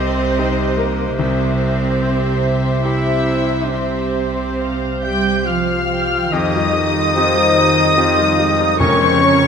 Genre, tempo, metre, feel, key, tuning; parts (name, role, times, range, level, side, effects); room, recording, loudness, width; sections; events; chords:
cinematic, emotional film score for orchestra; 71 BPM; 3/4; uneven beats, rubato; A4 = 440 Hz
dark studio violin section; melody; 0.0-9.5 s; Eb5 to G6; -21 LUFS; left 3 dB
warm cello; melody; 0.0-5.5 s; Bb3 to E4; -25 LUFS; right 2 dB
dark studio violin section; second line; 0.0-9.5 s; Bb4 to G5; -25 LUFS; left 4 dB
bright concert grand piano; accompaniment; 0.0-9.5 s; C2 to G4; -22 LUFS; left 2 dB
dark studio viola section; accompaniment; 0.0-9.5 s; F3 to C5; -24 LUFS; right 2 dB
dark studio double bass section; bass; 0.0-9.5 s; C2 to F2; -24 LUFS; right 3 dB
warm studio cello section; bass; 0.0-9.5 s; C3 to G3; -24 LUFS; right 3 dB
warm clarinet; second line; 5.0-9.5 s; Db4 to G4; -22 LUFS; equal
warm oboe; second line; 5.0-9.5 s; Db5 to G5; -20 LUFS; equal
mellow French horn section; sustained chords; 7.2-9.5 s; Ab3 to Db5; -20 LUFS; left 4 dB
timpani; percussion; 8.8-9.5 s; F2; -20 LUFS; left 2 dB
moderate scoring stage reverb, RT60 2.1 s; -14 LUFS; side -6 dB against mid
0.0-6.3 A section; 6.3-9.5 B section
0.0 Cm; 1.2 C; 6.3 Fsus2; 8.8 Bbmadd9/F